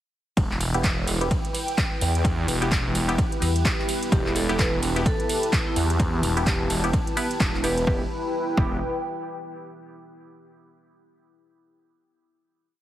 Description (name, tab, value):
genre	bass house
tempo	128 BPM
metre	4/4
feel	swing 59% on 16ths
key	E minor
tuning	A4 = 440 Hz
part	deep dark ambient pad	sustained chords	2.5-8.1 s	B3 to G4	-34 LUFS	equal	chorus, built-in reverb, sidechain pumping
part	phased detuned saw bass	bass	0.4-8.8 s	E1 to E2	-26 LUFS	equal	phaser, tube saturation, sidechain pumping
part	electronic kick drum	drums	0.4-8.7 s	none	-24 LUFS	equal	overdrive, small room ambience
part	house drum kit	drums	0.4-7.9 s	handclaps, hi-hat, ride cymbal	-30 LUFS	right 1 dB	small room ambience
part	airy breathy pad	texture	0.7-9.7 s	E4 to A5	-31 LUFS	equal	chorus, sidechain pumping
part	band-passed chord stab	stabs	0.7-8.8 s	B3 to B4	-31 LUFS	equal	phaser, sidechain pumping, dub echo
part	metallic FM bass	bass	3.4-3.6 s	E2	-22 LUFS	equal	tube saturation, sidechain pumping
part	vibraphone with medium mallets	melody	4.1-7.8 s	E4 to B4	-31 LUFS	equal	dub echo
room	light reverb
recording	heavily compressed radio sound, multiband compression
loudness	-21 LUFS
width	side -13 dB against mid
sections	0.4-7.9 drop; 7.9-9.7 final chord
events	drop 0.4-7.9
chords	0.4 Em